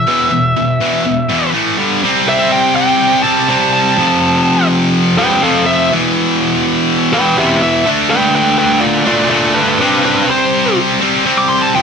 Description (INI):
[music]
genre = rock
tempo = 124 BPM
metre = 4/4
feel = straight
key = unclear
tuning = A4 = 441 Hz
[part]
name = bluesy overdriven lead guitar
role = melody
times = 0.0-11.8 s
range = D4 to D6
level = -14 LUFS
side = right 1 dB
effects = distortion, slapback echo
[part]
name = high-gain distorted guitar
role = riff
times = 0.0-11.8 s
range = E2 to D4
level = -12 LUFS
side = equal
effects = distortion
[sound]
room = light reverb, digital ambience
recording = none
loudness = -10 LUFS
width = side -6 dB against mid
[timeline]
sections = 0.0-2.0 A section; 2.0-11.8 B section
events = lead electric guitar solo 2.0-11.8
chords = 0.0 E5; 1.5 A5; 1.8 G5; 2.0 C5; 4.0 F; 5.9 Em; 7.9 Dm; 9.8 C5